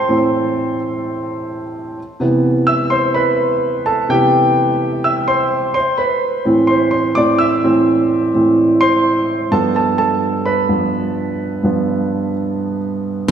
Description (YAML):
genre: pop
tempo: 127 BPM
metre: 4/4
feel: swing 56% on 16ths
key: unclear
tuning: A4 = 441 Hz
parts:
  - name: warm grand piano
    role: accompaniment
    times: 0.0-13.3 s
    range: G2 to E6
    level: -14 LUFS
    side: right 1 dB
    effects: slapback echo
room: wet lush hall reverb, RT60 2.1 s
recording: big arena sound, small room ambience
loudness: -14 LUFS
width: side -8 dB against mid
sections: 0.0-13.3 A section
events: grand piano solo 0.0-13.3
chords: 0.0 Am; 2.0 Cmaj7; 5.7 Am; 9.5 G7